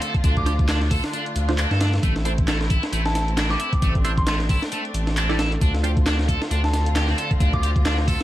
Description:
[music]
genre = breakbeat, breaks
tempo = 134 BPM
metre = 4/4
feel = swing 57% on 16ths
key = unclear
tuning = A4 = 440 Hz
[part]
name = rich symphonic string section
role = sustained chords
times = 0.0-8.2 s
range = D3 to F4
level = -31 LUFS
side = left 1 dB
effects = sidechain pumping
[part]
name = distorted electric guitar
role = riff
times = 0.0-8.2 s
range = G3 to A4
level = -29 LUFS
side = equal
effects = distortion, overdrive, vintage 12-bit sampler grit, digital delay
[part]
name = filtered dub chord stab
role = stabs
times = 0.0-7.6 s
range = D4 to D5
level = -29 LUFS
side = right 3 dB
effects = phaser, digital delay
[part]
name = breakbeat sampler-style drum kit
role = drums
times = 0.0-8.2 s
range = hi-hat, kick drum, snare drum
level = -23 LUFS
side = equal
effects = none
[part]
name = punchy analog drum machine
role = drums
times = 0.0-8.2 s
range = handclaps, hi-hat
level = -32 LUFS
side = equal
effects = none
[part]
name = saturated sub bass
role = bass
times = 0.2-8.2 s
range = A1 to G2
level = -22 LUFS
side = equal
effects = tube saturation
[part]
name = soft synth bell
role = melody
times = 0.4-7.7 s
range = A5 to D6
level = -30 LUFS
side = equal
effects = chorus, phaser, small speaker sound, digital delay
[sound]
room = little or no reverb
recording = vinyl crackle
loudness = -19 LUFS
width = side -14 dB against mid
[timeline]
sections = 0.0-8.2 A section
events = none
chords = 0.0 Dm7; 2.0 Am; 5.6 Dm7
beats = | 0.24 0.69 1.14 1.58 | 2.03 2.48 2.93 3.38 | 3.82 4.27 4.72 5.17 | 5.62 6.06 6.51 6.96 | 7.41 7.85

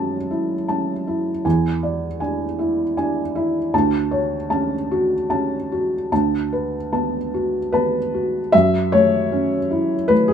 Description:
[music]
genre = neoclassical minimalist piano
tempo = 73-80 BPM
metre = 3/4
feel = rubato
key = F# minor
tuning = A4 = 440 Hz
[part]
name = felt-muted upright piano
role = solo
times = 0.0-10.3 s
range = D2 to A5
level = -18 LUFS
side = equal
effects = none
[sound]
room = moderate small room reverb, RT60 0.5 s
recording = minimal, uncompressed stereo recording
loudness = -18 LUFS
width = side -8 dB against mid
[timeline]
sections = 0.0-8.5 A section; 8.5-10.3 B section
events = none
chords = 0.0 F#m7; 1.4 E7; 3.7 Dmaj7; 6.1 Bm7/D; 8.5 F#m7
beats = 0.67 | 1.45 2.21 2.96 | 3.73 4.51 5.30 | 6.11 6.92 7.73 | 8.53 9.32 10.10

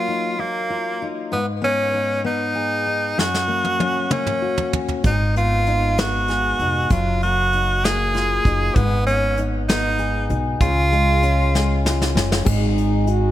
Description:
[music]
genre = six-eight pop ballad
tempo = 65 BPM (dotted quarters)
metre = 6/8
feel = straight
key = unclear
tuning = A4 = 436 Hz
[part]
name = edgy tenor saxophone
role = melody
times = 0.0-11.8 s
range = Bb3 to Ab4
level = -21 LUFS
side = right 1 dB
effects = ping-pong delay
[part]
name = fingerpicked steel-string acoustic guitar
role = accompaniment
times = 0.0-13.3 s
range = Gb2 to Ab4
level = -25 LUFS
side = left 4 dB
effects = none
[part]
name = soft brush drum kit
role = drums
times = 3.2-13.2 s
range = crash cymbal, hi-hat, kick drum, snare drum, toms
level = -22 LUFS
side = equal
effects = none
[part]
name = upright bass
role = bass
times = 5.0-13.3 s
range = F1 to Db2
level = -21 LUFS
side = equal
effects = none
[part]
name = mellow French horn section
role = second line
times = 12.5-13.3 s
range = Eb4 to Gb4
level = -23 LUFS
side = right 6 dB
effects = ping-pong delay
[sound]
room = light reverb, small room ambience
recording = none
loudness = -17 LUFS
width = side -13 dB against mid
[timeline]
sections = 0.0-12.5 A section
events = drum fill 3.2-5.0, 11.5-12.5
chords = 0.0 Ebmadd9/Gb; 1.3 Abm; 3.2 Gb; 5.0 Abm; 6.9 Ebmadd9/Gb; 8.8 Abm; 10.6 Db; 12.5 Ab5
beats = 0.39 | 1.32 2.25 | 3.18 4.11 | 5.05 5.98 | 6.91 7.84 | 8.77 9.69 | 10.61 11.54 | 12.47

